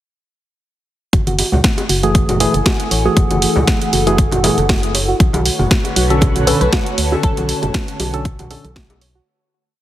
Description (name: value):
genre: deep house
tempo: 118 BPM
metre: 4/4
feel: swing 55% on 16ths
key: F# minor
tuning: A4 = 441 Hz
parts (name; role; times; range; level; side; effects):
- soft round pluck; arpeggios; 1.1-9.2 s; F#4 to F#5; -23 LUFS; right 3 dB; chorus, sidechain pumping, ping-pong delay
- organ-like FM bass; bass; 1.1-9.2 s; F#1 to D2; -19 LUFS; equal; sidechain pumping
- electronic kick drum; drums; 1.1-8.9 s; none; -16 LUFS; equal; none
- house drum kit; drums; 1.1-9.1 s; hi-hat, snare drum; -20 LUFS; right 1 dB; none
- warbly tape-like pad; texture; 2.0-9.3 s; D3 to A5; -25 LUFS; left 1 dB; chorus, built-in reverb, sidechain pumping
- congas and bongos; percussion; 1.3-9.0 s; none; -24 LUFS; left 2 dB; none
- barky tine electric piano; stabs; 2.0-8.6 s; D3 to A4; -20 LUFS; equal; fast stereo tremolo, sidechain pumping, ping-pong delay
- airy breathy pad; sustained chords; 5.2-9.2 s; D3 to C#5; -26 LUFS; right 1 dB; chorus, phaser, sidechain pumping
- glassy wavetable pluck; melody; 6.5-7.7 s; F#4 to B4; -22 LUFS; equal; chorus, ping-pong delay
room: light reverb, digital ambience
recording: heavily compressed radio sound, multiband compression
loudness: -13 LUFS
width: side -13 dB against mid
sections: 1.1-9.3 groove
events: fade-out 6.6-9.3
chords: 1.1 F#m9; 5.2 Bm9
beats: | 1.13 1.64 2.15 2.66 | 3.17 3.67 4.18 4.69 | 5.20 5.71 6.22 6.73 | 7.24 7.74 8.25 8.76